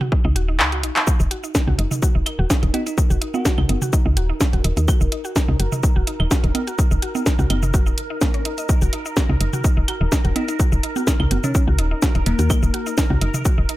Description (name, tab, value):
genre	minimal techno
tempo	126 BPM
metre	4/4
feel	swing 53% on 16ths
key	Eb minor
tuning	A4 = 440 Hz
part	mallet-like synth pluck	riff	0.0-13.7 s	Bb3 to Eb5	-30 LUFS	equal	chorus, sidechain pumping, tape echo
part	electronic toms, claves and congas	percussion	0.0-13.4 s	none	-26 LUFS	right 2 dB	overdrive
part	electronic kick drum	drums	0.1-13.6 s	none	-19 LUFS	equal	overdrive
part	woody FM bass	bass	0.2-13.6 s	Eb1 to Eb2	-20 LUFS	equal	sidechain pumping
part	house drum kit	drums	0.4-13.8 s	cabasa, handclaps, hi-hat, snare drum	-23 LUFS	equal	overdrive
part	bubbling stepped-filter texture	texture	1.1-13.8 s	Bb4	-32 LUFS	right 1 dB	chorus, built-in reverb, sidechain pumping
part	bell-like FM electric piano	melody	2.7-4.0, 10.4-12.9 s	Bb3 to Gb4	-28 LUFS	left 3 dB	chorus, tape echo
room	little or no reverb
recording	none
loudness	-17 LUFS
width	side -16 dB against mid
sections	0.0-13.8 A section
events	kick drops out 0.6-1.1; drum fill 0.6-1.1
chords	0.0 Ebm